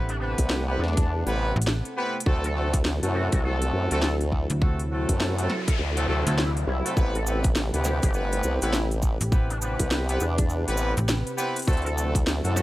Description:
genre	glitch hop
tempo	102 BPM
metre	4/4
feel	swing 61% on 16ths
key	A dorian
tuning	A4 = 440 Hz
part	warm analog pad	sustained chords	0.0-12.6 s	C3 to F#5	-34 LUFS	equal	chorus, sidechain pumping
part	bright horn section	stabs	0.0-12.6 s	A3 to B4	-30 LUFS	equal	vintage 12-bit sampler grit, sidechain pumping, tape echo
part	slap-like FM bass	bass	0.0-11.2 s	A1 to D2	-26 LUFS	equal	none
part	sync lead	melody	0.1-12.6 s	D4 to A4	-36 LUFS	equal	lush chorus, tape echo
part	drum and bass drum kit	drums	0.1-12.6 s	hi-hat, snare drum	-29 LUFS	equal	none
part	formant-sweep wobble bass	bass	0.4-12.6 s	G1 to F#2	-26 LUFS	equal	chorus
part	electronic kick drum	drums	0.4-12.2 s	none	-23 LUFS	equal	none
part	noise sweep	sound effects	4.9-7.0 s	none	-35 LUFS	left 2 dB	none
part	cabasa	percussion	7.0-12.6 s	none	-37 LUFS	right 3 dB	none
room	little or no reverb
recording	dry, gritty hardware recording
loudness	-22 LUFS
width	side -16 dB against mid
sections	0.0-12.6 A section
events	noise sweep 4.9-7.0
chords	0.0 Am7; 2.3 D9; 7.0 Am7; 11.7 D9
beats	0.50 1.09 1.68 | 2.26 2.85 3.44 4.03 | 4.62 5.20 5.79 6.38 | 6.97 7.56 8.15 8.73 | 9.32 9.91 10.50 11.09 | 11.68 12.26

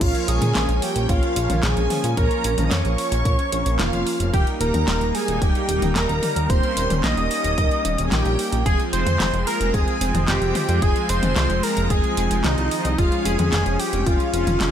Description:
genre	synthwave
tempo	111 BPM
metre	4/4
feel	straight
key	Bb dorian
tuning	A4 = 439 Hz
part	wide unison lead	melody	0.0-14.7 s	Eb4 to Eb5	-24 LUFS	equal	digital delay
part	string machine, violins	second line	0.0-14.7 s	Eb5 to Eb6	-31 LUFS	equal	ensemble chorus, digital delay
part	brassy analog pad	sustained chords	0.0-14.7 s	F3 to Eb4	-29 LUFS	left 1 dB	chorus, tremolo, sidechain pumping
part	mellow synth brass	stabs	0.0-14.7 s	Ab3 to Db5	-30 LUFS	right 5 dB	chorus, cassette tape, digital delay
part	chorused synth bass	bass	0.0-14.7 s	Eb1 to Bb2	-23 LUFS	equal	none
part	electronic kick drum	drums	0.0-14.2 s	none	-21 LUFS	equal	none
part	pop drum kit	drums	0.0-14.7 s	crash cymbal, handclaps, hi-hat, snare drum, toms	-26 LUFS	equal	none
room	little or no reverb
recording	none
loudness	-18 LUFS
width	side -9 dB against mid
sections	0.0-14.7 A section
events	none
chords	0.0 Bbm; 4.3 Eb; 8.7 Fm; 13.0 Db/F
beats	| 0.01 0.55 1.09 1.63 | 2.17 2.71 3.25 3.80 | 4.34 4.88 5.42 5.96 | 6.50 7.04 7.58 8.12 | 8.66 9.20 9.74 10.28 | 10.82 11.36 11.90 12.44 | 12.98 13.53 14.07 14.61

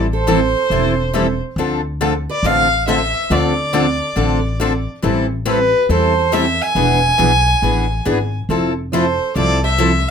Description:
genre	acoustic string swing (jazz manouche)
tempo	139 BPM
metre	4/4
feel	swing 65% on 8ths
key	A minor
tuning	A4 = 441 Hz
part	picked steel-string acoustic guitar	accompaniment	0.0-9.9 s	D3 to A4	-20 LUFS	left 6 dB	none
part	picked steel-string acoustic guitar	accompaniment	0.0-9.9 s	D3 to B4	-22 LUFS	right 6 dB	none
part	upright bass	bass	0.0-10.0 s	E1 to E2	-20 LUFS	left 1 dB	none
part	warm violin	melody	0.1-10.1 s	B4 to G#5	-17 LUFS	right 1 dB	none
part	picked steel-string acoustic guitar	second line	0.1-10.1 s	G4 to E5	-28 LUFS	right 3 dB	none
room	moderate club reverb, RT60 0.6 s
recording	none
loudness	-14 LUFS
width	side -7 dB against mid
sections	0.0-10.1 A section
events	none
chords	0.0 Am7; 1.6 Dm7; 5.0 Am7; 6.8 E7; 8.5 Fmaj7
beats	0.27 0.70 1.14 | 1.57 2.00 2.43 2.86 | 3.30 3.73 4.16 4.59 | 5.03 5.46 5.89 6.32 | 6.76 7.19 7.62 8.05 | 8.49 8.92 9.35 9.79

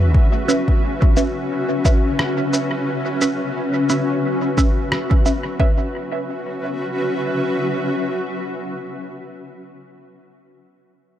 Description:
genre	ambient dub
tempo	88 BPM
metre	4/4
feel	swing 57% on 16ths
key	C# minor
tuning	A4 = 441 Hz
part	granular cloud pad	sustained chords	0.0-9.1 s	C#4 to E5	-22 LUFS	left 1 dB	built-in reverb
part	electronic kick drum	drums	0.1-5.8 s	none	-16 LUFS	equal	none
part	filtered dub chord stab	stabs	0.5-9.8 s	C#4 to E5	-24 LUFS	right 2 dB	phaser, cassette tape, dub echo
part	electronic shaker and rim click	drums	0.5-5.4 s	none	-26 LUFS	equal	dub echo
room	light reverb, digital ambience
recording	dark, warm production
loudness	-17 LUFS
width	side -11 dB against mid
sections	0.0-5.6 A section; 5.6-8.3 B section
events	none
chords	0.1 C#m7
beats	| 0.14 0.83 1.51 2.19 | 2.87 3.55 4.24 4.92 | 5.60 6.28 6.96 7.64

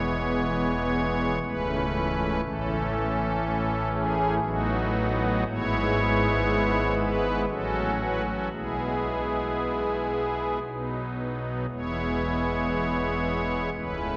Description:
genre	classical, chorale-style piece for pipe organ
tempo	59 BPM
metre	3/4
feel	rubato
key	E major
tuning	A4 = 440 Hz
part	pipe organ, strings celeste	solo	0.0-14.2 s	C#1 to C#5	-27 LUFS	equal	none
room	wet cathedral reverb, RT60 4.7 s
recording	none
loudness	-27 LUFS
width	mono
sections	0.0-14.2 A section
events	none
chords	0.0 E; 1.4 A/C#; 2.4 A; 4.4 B7/A; 5.5 E/G#; 7.5 F#m/A; 8.5 E/B; 10.6 B; 11.7 E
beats	0.41 1.42 | 2.43 3.43 4.43 | 5.47 6.48 7.49 | 8.53 9.58 10.63 | 11.69 12.72 13.73

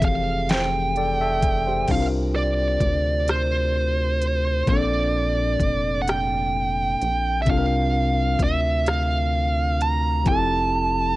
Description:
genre	slow six-eight R&B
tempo	43 BPM (dotted quarters)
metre	6/8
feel	straight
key	unclear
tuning	A4 = 440 Hz
part	high-gain lead guitar	melody	0.0-11.2 s	C5 to Bb5	-23 LUFS	right 2 dB	distortion
part	overdriven tine electric piano	accompaniment	0.0-11.2 s	Bb2 to E5	-27 LUFS	left 2 dB	auto-pan
part	rubbery square bass	bass	0.0-11.2 s	F1 to D2	-25 LUFS	equal	none
part	smooth R&B drum kit	drums	0.0-10.5 s	crash cymbal, hi-hat, kick drum, rim click, snare drum	-24 LUFS	equal	none
room	light reverb, digital ambience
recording	worn, warbling old tape, cassette tape, warbly pitch drift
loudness	-19 LUFS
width	side -18 dB against mid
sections	0.0-1.9 A section; 1.9-11.2 B section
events	lead electric guitar solo 0.0-1.9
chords	0.0 Fmaj9; 1.9 C9sus4; 4.7 Bbmaj9; 7.5 C9sus4; 10.3 Fmaj7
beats	0.49 | 1.89 3.28 | 4.68 6.08 | 7.47 8.87 | 10.26

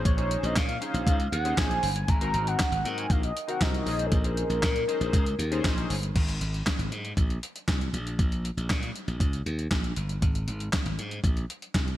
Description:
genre	early-eighties boogie funk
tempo	118 BPM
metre	4/4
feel	straight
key	Bb minor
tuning	A4 = 440 Hz
part	chorused polysynth	accompaniment	0.0-6.0 s	C4 to C5	-34 LUFS	left 3 dB	slapback echo
part	warm velvety synth lead	melody	0.1-5.9 s	A4 to Bb5	-31 LUFS	equal	chorus, slapback echo
part	glassy slap bass	bass	0.1-12.0 s	G1 to Bb2	-30 LUFS	equal	none
part	clean 12-bit digital drum machine	drums	0.1-12.0 s	crash cymbal, handclaps, hi-hat, kick drum, snare drum	-27 LUFS	equal	none
room	light reverb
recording	none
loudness	-25 LUFS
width	side -14 dB against mid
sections	0.0-6.2 A section; 6.2-12.0 B section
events	none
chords	0.0 Bbm11; 2.1 Ab9; 3.9 Bbm11; 6.2 N.C.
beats	| 0.05 0.56 1.07 1.58 | 2.09 2.60 3.10 3.61 | 4.12 4.63 5.14 5.65 | 6.16 6.66 7.17 7.68 | 8.19 8.70 9.21 9.71 | 10.22 10.73 11.24 11.75

